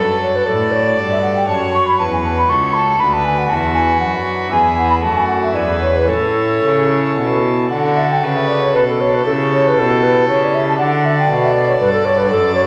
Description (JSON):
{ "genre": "classical, baroque-style sonata movement with continuo", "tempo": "118 BPM", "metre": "3/4", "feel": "rubato", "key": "A major, D major from 7.7 s", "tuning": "A4 = 441 Hz", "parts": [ { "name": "mellow baroque flute", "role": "melody", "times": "0.0-12.6 s", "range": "A4 to C#6", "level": "-18 LUFS", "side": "equal", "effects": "none" }, { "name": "rich violin", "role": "second line", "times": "0.0-12.7 s", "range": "F#4 to D5", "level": "-24 LUFS", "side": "equal", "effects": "none" }, { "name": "pipe organ, principal chorus", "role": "accompaniment", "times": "0.0-12.7 s", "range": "C#2 to C#5", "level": "-23 LUFS", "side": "equal", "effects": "none" }, { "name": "rich cello", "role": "bass", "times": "0.0-12.7 s", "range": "C#2 to D3", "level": "-22 LUFS", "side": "equal", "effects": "none" } ], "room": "wet recital hall reverb, RT60 1.5 s", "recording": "none", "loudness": "-15 LUFS", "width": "mono", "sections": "0.0-7.7 A section; 7.7-12.7 A section", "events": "none", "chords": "0.0 D/F#; 1.5 F#m; 3.0 Bm/D; 4.5 E; 5.0 D/F#; 5.6 E7; 6.1 A; 7.7 D; 9.3 A7; 10.8 D" }